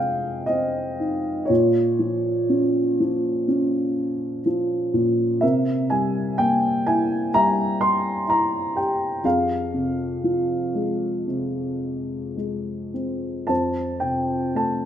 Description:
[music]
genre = classical, lyrical solo piano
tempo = 52-64 BPM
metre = 4/4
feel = rubato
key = F minor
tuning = A4 = 441 Hz
[part]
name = dark upright piano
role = solo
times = 0.0-14.9 s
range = F2 to C6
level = -20 LUFS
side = equal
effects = none
[sound]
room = moderate recital hall reverb, RT60 1.6 s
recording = none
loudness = -20 LUFS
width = side -10 dB against mid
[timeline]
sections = 0.0-13.5 A section; 13.5-14.9 B section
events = none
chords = 0.0 Fm7; 1.5 Bbm; 5.4 C7; 9.2 Fm; 13.5 F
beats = 0.50 | 1.50 2.49 3.48 4.45 | 5.42 6.39 7.34 8.28 | 9.24 10.25 11.28 12.39 | 13.50 14.56

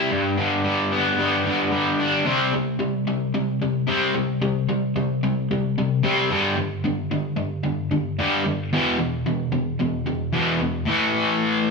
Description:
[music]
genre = rock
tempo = 111 BPM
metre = 4/4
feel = straight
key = unclear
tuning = A4 = 440 Hz
[part]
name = crunchy overdriven guitar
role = solo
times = 0.0-11.7 s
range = E2 to D4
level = -20 LUFS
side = left 1 dB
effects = harmonic tremolo
[sound]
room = wet stone room reverb, RT60 1.2 s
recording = band playing live in one room, small room ambience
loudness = -20 LUFS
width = side -3 dB against mid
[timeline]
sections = 0.0-2.3 A section; 2.3-10.9 B section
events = none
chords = 0.1 G; 2.3 C5; 6.3 G5; 8.7 E5; 10.9 A5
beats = | 0.09 0.63 1.17 1.72 | 2.26 2.80 3.34 3.88 | 4.42 4.96 5.50 6.04 | 6.57 7.11 7.65 8.19 | 8.72 9.26 9.80 10.33 | 10.87 11.40

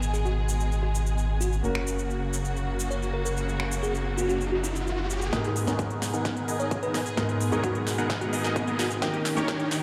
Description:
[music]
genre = EDM, festival progressive house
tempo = 130 BPM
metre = 4/4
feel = straight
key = G# minor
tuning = A4 = 442 Hz
[part]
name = warm concert grand piano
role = accompaniment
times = 0.0-9.8 s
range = G#2 to C#5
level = -34 LUFS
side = equal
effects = sidechain pumping, digital delay
[part]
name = dark studio string section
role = sustained chords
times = 0.0-9.8 s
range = B2 to G#4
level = -36 LUFS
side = equal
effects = sidechain pumping
[part]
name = saturated sub bass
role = bass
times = 0.0-5.3 s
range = F#1 to G#1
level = -31 LUFS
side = equal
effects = sidechain pumping
[part]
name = big-room dance drum kit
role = drums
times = 0.0-9.8 s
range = finger snaps, hi-hat, shaker, snare drum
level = -37 LUFS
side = equal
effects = overdrive, high-pass filter on perc, high-pass filter on snare, high-pass filter on hats
[part]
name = bell-like FM electric piano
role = melody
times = 0.1-9.1 s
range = F#4 to C#5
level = -36 LUFS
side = equal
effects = chorus, phaser, digital delay
[part]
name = riser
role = sound effects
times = 3.3-9.8 s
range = none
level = -40 LUFS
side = equal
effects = none
[part]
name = dense compressed supersaw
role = riff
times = 5.3-9.6 s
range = B3 to F#5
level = -33 LUFS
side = equal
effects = sidechain pumping, low-pass filter, digital delay
[part]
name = electronic kick drum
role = drums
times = 5.3-9.6 s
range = none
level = -34 LUFS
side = equal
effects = high-pass filter on kick
[sound]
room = light reverb, digital ambience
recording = played on a big sound system in a bare room, large studio reverb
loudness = -28 LUFS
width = mono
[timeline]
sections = 0.0-5.3 A section; 5.3-9.8 B section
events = riser 3.3-5.3; build-up 5.3-9.8; drum fill 5.3-9.8; filter sweep on supersaw synth 5.3-9.8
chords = 0.0 G#madd9; 1.6 F#; 5.3 G#madd9; 9.0 D#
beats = 0.25 0.71 1.17 | 1.64 2.10 2.56 3.02 | 3.48 3.94 4.41 4.87 | 5.33 5.79 6.25 6.71 | 7.17 7.64 8.10 8.56 | 9.02 9.48

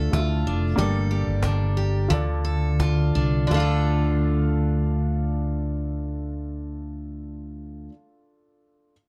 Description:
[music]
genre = acoustic pop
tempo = 83-94 BPM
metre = 4/4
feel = straight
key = D minor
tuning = A4 = 440 Hz
[part]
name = picked steel-string acoustic guitar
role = accompaniment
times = 0.0-8.0 s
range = D3 to A4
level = -29 LUFS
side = equal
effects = none
[part]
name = warm upright piano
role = accompaniment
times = 0.0-8.9 s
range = Bb3 to F5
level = -35 LUFS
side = equal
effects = none
[part]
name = mellow fretless electric bass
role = bass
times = 0.0-7.9 s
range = F1 to D2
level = -26 LUFS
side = equal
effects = analog chorus
[part]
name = cajon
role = drums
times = 0.1-3.7 s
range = none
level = -33 LUFS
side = equal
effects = none
[sound]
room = little or no reverb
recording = dry, close 1970s-style studio recording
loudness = -24 LUFS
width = mono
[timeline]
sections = 0.0-3.5 A section; 3.5-6.4 B section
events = slowing down 0.0-3.5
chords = 0.0 Dm; 0.8 Gmadd9; 2.1 Dm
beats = 0.13 | 0.77 1.43 2.10 2.79 | 3.51 4.24 4.96 5.69

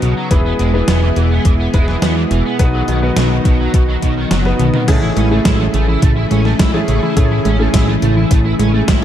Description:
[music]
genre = synthwave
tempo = 105 BPM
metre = 4/4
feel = straight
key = unclear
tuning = A4 = 440 Hz
[part]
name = lush unison pad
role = sustained chords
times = 0.0-9.0 s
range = B2 to D#5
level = -19 LUFS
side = equal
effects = chorus, sidechain pumping
[part]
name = overdriven electric guitar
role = riff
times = 0.0-9.0 s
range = B2 to E4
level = -25 LUFS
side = right 2 dB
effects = ensemble chorus, digital delay
[part]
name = clear baby grand piano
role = stabs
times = 0.0-8.6 s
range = A3 to B4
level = -21 LUFS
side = left 1 dB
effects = digital delay
[part]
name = fat analog bass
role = bass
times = 0.0-9.0 s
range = E1 to A2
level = -16 LUFS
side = equal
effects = tube saturation, sidechain pumping
[part]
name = gated 80s digital drum machine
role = drums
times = 0.0-9.0 s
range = crash cymbal, hi-hat, snare drum, toms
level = -20 LUFS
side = equal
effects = gated reverb, gated reverb snare, overdrive
[part]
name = electronic kick drum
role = drums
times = 0.3-9.0 s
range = none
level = -14 LUFS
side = equal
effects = overdrive
[part]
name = thumb-piano-like synth pluck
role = arpeggios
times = 4.9-9.0 s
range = C#3 to A3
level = -19 LUFS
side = right 2 dB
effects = chorus, cassette tape, digital delay
[sound]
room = light reverb, digital ambience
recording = dark, warm production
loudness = -11 LUFS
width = side -10 dB against mid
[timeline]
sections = 0.0-4.9 A section; 4.9-9.0 B section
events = drum fill 4.6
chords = 0.3 E; 2.6 B; 4.9 Amaj7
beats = | 0.31 0.88 1.45 2.02 | 2.60 3.17 3.74 4.31 | 4.88 5.45 6.02 6.59 | 7.17 7.74 8.31 8.88

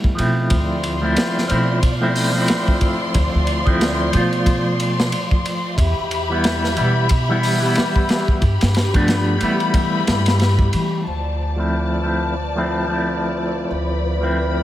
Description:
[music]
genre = trip hop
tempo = 91 BPM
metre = 4/4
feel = swing 59% on 16ths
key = D dorian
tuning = A4 = 441 Hz
[part]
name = electric guitar with an envelope filter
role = accompaniment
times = 0.0-14.6 s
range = E3 to C5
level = -21 LUFS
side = equal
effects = tremolo, low-pass filter, tape echo
[part]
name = crunchy breakbeat drum kit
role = drums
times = 0.0-10.9 s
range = hi-hat, kick drum, ride cymbal, snare drum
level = -21 LUFS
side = equal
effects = none
[part]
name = upright bass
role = bass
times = 0.2-14.6 s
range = D2 to E3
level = -21 LUFS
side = equal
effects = none
[part]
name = dark studio string section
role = sustained chords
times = 0.5-14.6 s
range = F3 to C6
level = -24 LUFS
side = left 2 dB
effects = none
[part]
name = flickering grainy texture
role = texture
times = 11.8-14.6 s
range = B4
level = -30 LUFS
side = equal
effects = built-in reverb
[sound]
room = light reverb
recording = none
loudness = -16 LUFS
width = side -13 dB against mid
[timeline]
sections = 0.0-11.1 A section; 11.1-14.6 B section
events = filter sweep on clean electric guitar 11.1-14.6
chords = 0.0 G7; 0.5 Dm7; 5.8 Em; 8.4 G7; 11.1 Dm7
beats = | 0.51 1.17 1.83 2.49 | 3.15 3.81 4.47 5.13 | 5.79 6.45 7.10 7.76 | 8.42 9.08 9.74 10.40 | 11.06 11.72 12.38 13.04 | 13.70 14.36

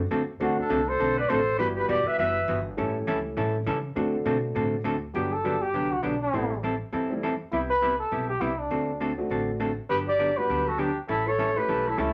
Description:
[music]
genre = country, western swing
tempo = 202 BPM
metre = 4/4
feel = swing 61% on 8ths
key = G major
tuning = A4 = 439 Hz
[part]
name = warm upright piano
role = accompaniment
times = 0.0-12.0 s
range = G3 to A4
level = -35 LUFS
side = equal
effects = none
[part]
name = upright bass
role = bass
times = 0.0-12.1 s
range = E1 to D3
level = -38 LUFS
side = equal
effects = none
[part]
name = hollow-body jazz guitar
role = accompaniment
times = 0.1-12.1 s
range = C3 to A4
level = -31 LUFS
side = equal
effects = none
[part]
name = trumpet with bucket mute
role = melody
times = 0.4-2.6, 5.1-12.1 s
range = C4 to E5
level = -28 LUFS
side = equal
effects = none
[part]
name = clear clarinet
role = second line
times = 0.4-2.6, 9.9-12.1 s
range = A3 to B4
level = -33 LUFS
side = equal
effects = none
[sound]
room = wet studio ambience, RT60 0.5 s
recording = none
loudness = -27 LUFS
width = mono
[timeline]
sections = 0.0-5.1 A section; 5.1-12.1 B section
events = none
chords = 0.0 D7; 1.6 Emadd9; 2.8 A7; 4.0 D7; 5.1 Gmaj7; 6.3 Am7; 7.5 Cmaj7; 8.7 D7; 9.9 Gmaj7; 11.1 A7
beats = 0.10 | 0.40 0.69 0.99 1.29 | 1.58 1.88 2.18 2.47 | 2.77 3.07 3.36 3.66 | 3.96 4.25 4.55 4.84 | 5.14 5.44 5.74 6.03 | 6.33 6.63 6.92 7.22 | 7.52 7.82 8.11 8.41 | 8.71 9.01 9.30 9.60 | 9.90 10.20 10.49 10.79 | 11.09 11.39 11.68 11.98

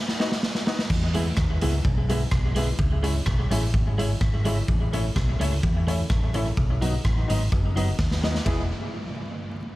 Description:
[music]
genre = ska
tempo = 127 BPM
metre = 4/4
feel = straight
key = E major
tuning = A4 = 442 Hz
[part]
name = raw garage drum kit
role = drums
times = 0.1-8.6 s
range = crash cymbal, hi-hat, kick drum, ride cymbal, rim click, snare drum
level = -25 LUFS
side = equal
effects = tape echo
[part]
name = clean electric guitar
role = accompaniment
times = 0.2-8.6 s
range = F#3 to G#4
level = -32 LUFS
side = right 2 dB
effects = tape echo
[part]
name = dark upright piano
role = stabs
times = 0.2-8.6 s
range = D#4 to E5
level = -33 LUFS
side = left 3 dB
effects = tape echo
[part]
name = vintage muted fingered electric bass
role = bass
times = 0.9-8.7 s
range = E1 to E2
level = -25 LUFS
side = equal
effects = none
[sound]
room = small room ambience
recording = vinyl crackle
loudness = -22 LUFS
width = side -18 dB against mid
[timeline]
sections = 0.9-8.5 A section; 8.5-9.8 B section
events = break 0.0-0.9; drum fill 0.0-0.9, 8.0-8.5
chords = 0.0 B; 0.9 E; 2.8 C#m; 4.7 A; 6.6 B; 8.5 E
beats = 0.42 | 0.90 1.37 1.84 2.32 | 2.79 3.26 3.73 4.21 | 4.68 5.15 5.62 6.09 | 6.57 7.04 7.51 7.98 | 8.46

